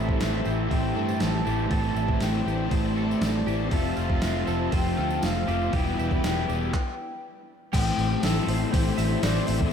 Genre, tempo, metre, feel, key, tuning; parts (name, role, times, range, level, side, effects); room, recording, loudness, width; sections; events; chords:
rock, shoegaze and dream pop; 120 BPM; 4/4; straight; A minor; A4 = 438 Hz
mellow concert flute; melody; 0.0-9.7 s; C5 to A5; -34 LUFS; left 1 dB; tape echo
string machine, cellos; sustained chords; 0.0-9.7 s; E4 to A5; -36 LUFS; equal; ensemble chorus
twelve-string electric guitar; arpeggios; 0.0-9.7 s; E4 to E5; -36 LUFS; right 10 dB; analog chorus, tape echo
biting overdriven guitar; riff; 0.0-6.7 s; A2 to F4; -36 LUFS; right 8 dB; reverse reverb
crunchy overdriven guitar; riff; 0.0-9.7 s; A2 to F4; -30 LUFS; left 9 dB; analog chorus
raw garage guitar; riff; 0.0-6.7 s; E2 to A3; -31 LUFS; right 2 dB; overdrive, wide subtle chorus
vintage muted fingered electric bass; bass; 0.0-9.6 s; E1 to G2; -28 LUFS; equal
gated 80s digital drum machine; drums; 0.1-9.7 s; crash cymbal, handclaps, hi-hat, kick drum, snare drum; -28 LUFS; equal; gated reverb, gated reverb snare
tambourine; percussion; 0.2-9.6 s; -48 LUFS; right 12 dB
moderate plate reverb, RT60 2.1 s; dreamy mix soaked in reverb; -23 LUFS; side -7 dB against mid
0.0-7.7 A section; 7.7-9.7 B section
stop 6.7-7.7
0.0 Am7; 3.7 Fmaj7; 5.7 Em7; 7.7 Am7